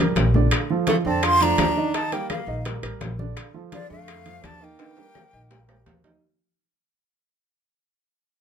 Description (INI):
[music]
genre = Afro-Cuban jazz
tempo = 168 BPM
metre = 4/4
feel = straight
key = unclear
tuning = A4 = 440 Hz
[part]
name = warm concert grand piano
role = accompaniment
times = 0.0-6.2 s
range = D3 to Eb5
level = -27 LUFS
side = right 6 dB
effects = none
[part]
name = upright bass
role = bass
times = 0.0-6.2 s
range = A1 to F2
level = -25 LUFS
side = left 1 dB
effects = none
[part]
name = bongos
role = percussion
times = 0.2-6.0 s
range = none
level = -32 LUFS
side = left 8 dB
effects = none
[part]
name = congas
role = percussion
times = 0.2-6.2 s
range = none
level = -26 LUFS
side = left 2 dB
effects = none
[part]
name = timbales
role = percussion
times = 0.2-6.1 s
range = none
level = -30 LUFS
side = right 5 dB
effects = none
[part]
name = claves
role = percussion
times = 0.5-5.9 s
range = none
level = -35 LUFS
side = left 8 dB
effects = none
[part]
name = breathy jazz flute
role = melody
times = 0.9-5.9 s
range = D5 to C6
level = -24 LUFS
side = equal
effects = none
[part]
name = warm tenor saxophone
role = second line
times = 0.9-5.9 s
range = F3 to F4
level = -27 LUFS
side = right 3 dB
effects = none
[sound]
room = light reverb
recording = minimal, uncompressed stereo recording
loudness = -20 LUFS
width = side -8 dB against mid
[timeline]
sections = 0.0-6.2 A section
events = fade-out 0.0-6.2; drum fill 0.0-0.5, 4.8-6.2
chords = 0.0 Eb (rootless); 0.5 Bbmaj7; 1.9 Ebadd9; 3.4 Ebmaj7(b5, no3); 4.8 Eb